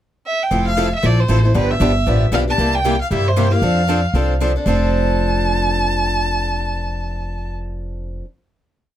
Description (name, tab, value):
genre	acoustic string swing (jazz manouche)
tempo	231 BPM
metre	4/4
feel	swing 58% on 8ths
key	F major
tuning	A4 = 439 Hz
part	rich violin	melody	0.3-7.5 s	B4 to A5	-21 LUFS	right 1 dB	none
part	picked steel-string acoustic guitar	accompaniment	0.5-8.3 s	C3 to A4	-22 LUFS	left 4 dB	none
part	picked steel-string acoustic guitar	accompaniment	0.5-8.3 s	C3 to A4	-26 LUFS	right 8 dB	none
part	upright bass	bass	0.5-8.2 s	F1 to G2	-18 LUFS	equal	none
room	little or no reverb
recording	close, detailed microphones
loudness	-15 LUFS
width	side -11 dB against mid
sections	0.0-0.5 pickup bar; 0.5-4.7 A section; 4.7-6.7 final chord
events	none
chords	0.0 N.C.; 0.5 Fmaj7; 1.5 G7; 2.6 C7; 3.6 F6